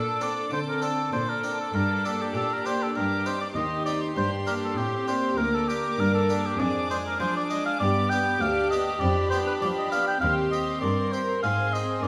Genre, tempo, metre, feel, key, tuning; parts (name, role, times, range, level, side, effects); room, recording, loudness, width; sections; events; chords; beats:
classical, baroque-style concerto movement with solo episodes; 99 BPM; 4/4; straight; G minor; A4 = 441 Hz
rich studio violin section; melody; 0.0-12.1 s; B5 to D6; -40 LUFS; equal
warm oboe; melody; 0.0-12.1 s; G4 to G5; -30 LUFS; equal
warm studio violin section; second line; 0.0-12.1 s; G4 to Bb4; -33 LUFS; equal
harpsichord; accompaniment; 0.0-12.1 s; D2 to A4; -37 LUFS; equal
warm studio viola section; accompaniment; 0.0-12.1 s; Bb3 to Eb4; -36 LUFS; equal
rich studio cello section; bass; 0.0-12.1 s; D2 to F3; -33 LUFS; equal
wet recital hall reverb, RT60 1.4 s; -26 LUFS; mono
0.0-12.1 A section
0.0 D7(no3); 1.7 Gm; 3.0 Cm/G; 4.2 Gm; 6.6 Ddim/F; 7.8 G; 9.0 G7/F; 10.2 Cm/Eb; 11.4 Ab
0.52 1.13 | 1.74 2.35 2.96 3.57 | 4.17 4.78 5.38 5.99 | 6.60 7.20 7.81 8.41 | 9.02 9.62 10.22 10.83 | 11.44 12.04